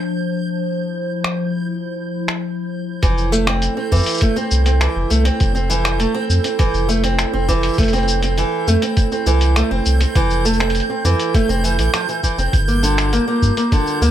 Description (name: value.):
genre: folktronica.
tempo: 101 BPM.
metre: 4/4.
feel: straight.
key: F major.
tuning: A4 = 444 Hz.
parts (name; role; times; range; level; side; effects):
warbly tape-like pad; sustained chords; 0.0-14.1 s; F3 to C5; -24 LUFS; right 2 dB; chorus, built-in reverb.
backwards swelling texture; texture; 0.0-14.1 s; G6; -29 LUFS; right 5 dB; built-in reverb.
lo-fi sampler-style drum kit; drums; 1.2-14.1 s; cabasa, finger snaps, hi-hat; -23 LUFS; left 1 dB; none.
nylon-string guitar; arpeggios; 3.0-14.1 s; D3 to C4; -20 LUFS; equal; digital delay.
warm sub bass; bass; 3.0-14.1 s; F1 to G2; -18 LUFS; equal; none.
electronic kick drum; drums; 3.0-13.8 s; none; -17 LUFS; equal; none.
room: light reverb.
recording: none.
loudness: -15 LUFS.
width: side -11 dB against mid.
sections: 0.0-3.0 A section; 3.0-14.1 B section.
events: break 2.4-3.0.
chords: 0.0 Dm7; 3.0 Fmaj7; 12.5 Gm7.